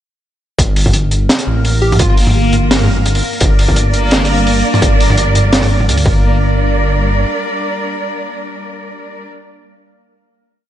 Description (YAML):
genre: half-time drum and bass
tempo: 170 BPM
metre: 4/4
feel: swing 55% on 16ths, half-time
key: G minor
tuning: A4 = 440 Hz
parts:
  - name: dark detuned saw bass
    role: bass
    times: 0.6-7.3 s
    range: G1 to D2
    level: -14 LUFS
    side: equal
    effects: tube saturation
  - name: crunchy breakbeat drum kit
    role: drums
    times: 0.6-6.0 s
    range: hi-hat, snare drum, toms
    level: -15 LUFS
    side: equal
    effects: none
  - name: electronic kick drum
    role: drums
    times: 0.6-6.1 s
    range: none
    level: -13 LUFS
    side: equal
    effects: distortion
  - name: backwards swelling texture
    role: texture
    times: 1.5-6.2 s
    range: Bb3 to Bb4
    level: -20 LUFS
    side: equal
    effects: built-in reverb
  - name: plucky unison lead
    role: melody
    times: 1.8-2.1 s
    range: F4 to G4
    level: -21 LUFS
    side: right 1 dB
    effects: ping-pong delay
  - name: clear studio cello section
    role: sustained chords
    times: 3.4-9.3 s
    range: G3 to D5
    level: -18 LUFS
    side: right 2 dB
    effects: sidechain pumping
room: light reverb, studio ambience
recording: nothing above 10.4 kHz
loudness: -10 LUFS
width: side -11 dB against mid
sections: 0.6-6.2 drop; 6.2-9.1 final hit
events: drop 0.6-6.2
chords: 0.6 Gm